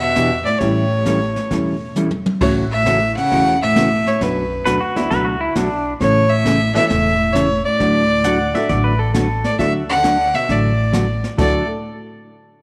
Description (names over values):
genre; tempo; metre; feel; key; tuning
country, western swing; 134 BPM; 4/4; swing 68% on 8ths; D major; A4 = 441 Hz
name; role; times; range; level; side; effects
rich fiddle; melody; 0.0-11.7 s; B4 to F#5; -21 LUFS; equal; none
clear cello; second line; 0.0-11.7 s; F#2 to D3; -26 LUFS; equal; slapback echo
honky-tonk upright piano; accompaniment; 0.0-11.7 s; E3 to A4; -28 LUFS; equal; none
upright bass; bass; 0.0-11.7 s; E1 to E2; -26 LUFS; equal; none
hollow-body jazz guitar; accompaniment; 0.2-11.6 s; B2 to A4; -24 LUFS; equal; none
jazz brush drum kit; drums; 0.2-11.7 s; brushed snare drum, crash cymbal, hi-hat, kick drum, snare drum, toms; -27 LUFS; equal; none
pedal steel guitar; second line; 4.7-11.7 s; D4 to F#5; -25 LUFS; equal; none
room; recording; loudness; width
moderate echo chamber reverb, RT60 1.8 s; none; -17 LUFS; mono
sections
0.0-9.6 A section; 9.6-11.4 B section; 11.4-12.6 C section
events
drum fill 2.0-2.4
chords
0.0 Em7; 0.6 A7; 2.4 A6; 4.2 Bm7; 6.0 A; 7.8 D